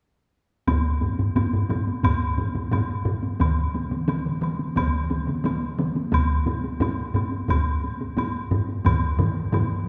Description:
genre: japanese traditional, taiko drum ensemble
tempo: 88 BPM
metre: 4/4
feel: straight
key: none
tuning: none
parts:
  - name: taiko ensemble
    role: percussion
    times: 0.7-9.7 s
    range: none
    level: -31 LUFS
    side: equal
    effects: none
  - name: taiko ensemble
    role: percussion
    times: 0.7-9.7 s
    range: none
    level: -28 LUFS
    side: equal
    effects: none
  - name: taiko ensemble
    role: percussion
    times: 0.7-9.0 s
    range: none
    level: -29 LUFS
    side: equal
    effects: none
  - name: woodblock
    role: percussion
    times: 0.7-9.7 s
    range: none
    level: -34 LUFS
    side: equal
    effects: none
  - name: taiko ensemble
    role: percussion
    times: 3.4-9.9 s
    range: none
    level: -30 LUFS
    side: equal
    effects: none
room: wet church reverb, RT60 2.7 s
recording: recorded in a church or concert hall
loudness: -24 LUFS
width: mono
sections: 0.7-9.9 A section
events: none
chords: none

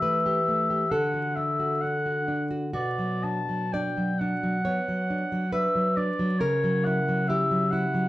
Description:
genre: romantic duo for oboe and classical guitar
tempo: 59-71 BPM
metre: 4/4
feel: rubato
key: unclear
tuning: A4 = 440 Hz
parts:
  - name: warm oboe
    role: melody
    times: 0.0-8.1 s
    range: C#5 to A5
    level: -28 LUFS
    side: left 1 dB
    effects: none
  - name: nylon-string guitar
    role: accompaniment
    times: 0.0-8.1 s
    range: B2 to D5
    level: -26 LUFS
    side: equal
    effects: none
room: wet small room reverb, RT60 0.6 s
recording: heard from further back in the room, vinyl crackle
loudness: -24 LUFS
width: side -16 dB against mid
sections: 0.0-8.1 A section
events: none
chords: 0.0 A7(no3)/E; 0.9 D; 2.7 Bm; 6.4 F#7/C#

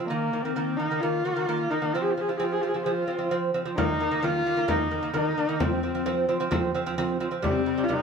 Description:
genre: mongolian traditional, Mongolian folk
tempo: 131 BPM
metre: 4/4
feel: straight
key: unclear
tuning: A4 = 439 Hz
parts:
  - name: lute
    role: arpeggios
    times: 0.0-8.0 s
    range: C3 to C4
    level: -27 LUFS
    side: right 2 dB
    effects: none
  - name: rich horsehead fiddle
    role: melody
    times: 0.1-8.0 s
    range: Bb3 to Ab4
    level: -27 LUFS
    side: left 2 dB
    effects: none
  - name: frame drum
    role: percussion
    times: 3.8-8.0 s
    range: none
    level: -30 LUFS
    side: left 2 dB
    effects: none
room: wet studio reverb, RT60 0.9 s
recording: band playing live in one room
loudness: -24 LUFS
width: side -6 dB against mid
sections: 0.0-3.8 A section; 3.8-8.0 B section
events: none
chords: 0.1 Eb5; 1.9 F5; 3.8 Eb5; 5.6 F5; 7.4 C5

